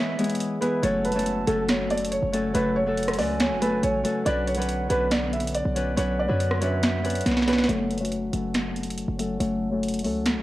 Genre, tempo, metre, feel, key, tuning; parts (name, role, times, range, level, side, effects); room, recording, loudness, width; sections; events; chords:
hip hop, trap; 140 BPM; 4/4; half-time; F# minor; A4 = 440 Hz
felt-muted upright piano; melody; 0.0-7.7 s; A4 to E5; -28 LUFS; right 1 dB; cassette tape, analog delay
breathy mellow silver concert flute; second line; 0.0-7.2 s; E5 to A5; -36 LUFS; right 6 dB; cassette tape, analog delay
Celtic harp; accompaniment; 0.0-10.4 s; E3 to B4; -27 LUFS; left 2 dB; low-pass filter, cassette tape
dark analog pad; sustained chords; 0.0-7.7 s; C#3 to B4; -36 LUFS; right 2 dB; chorus, cassette tape
booming analog drum machine; drums; 0.2-10.4 s; finger snaps, hi-hat, rim click, snare drum; -27 LUFS; right 1 dB; cassette tape
hard-hitting 808-style bass; bass; 0.8-10.4 s; F#1 to F#2; -30 LUFS; right 1 dB
light reverb; home recording on cassette; -22 LUFS; side -16 dB against mid
0.0-7.7 A section; 7.7-10.4 B section
break 0.0-0.8; drum fill 7.3-7.7
0.0 E; 0.8 F#m; 4.3 Bmadd9; 7.7 F#m